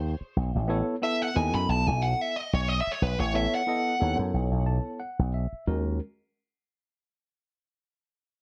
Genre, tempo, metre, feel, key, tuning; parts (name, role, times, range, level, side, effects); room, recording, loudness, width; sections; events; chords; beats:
jazz; 90 BPM; 4/4; swing 55% on 16ths; A4 = 440 Hz
slap bass with an envelope filter; bass; 0.0-6.0 s; A1 to F#2; -29 LUFS; equal
tine electric piano; accompaniment; 0.7-6.0 s; Ab3 to A5; -34 LUFS; equal; overdrive
smooth overdriven lead guitar; melody; 1.0-4.2 s; B4 to B5; -31 LUFS; equal
light reverb; -28 LUFS; mono
0.0-5.7 A section; 5.7-8.3 B section
lead electric guitar solo 0.0-5.7; tine electric piano fill 4.3-5.7
0.4 B9sus4; 5.7 Ebm
| 0.36 1.03 1.69 2.36 | 3.02 3.69 4.35 5.01 | 5.68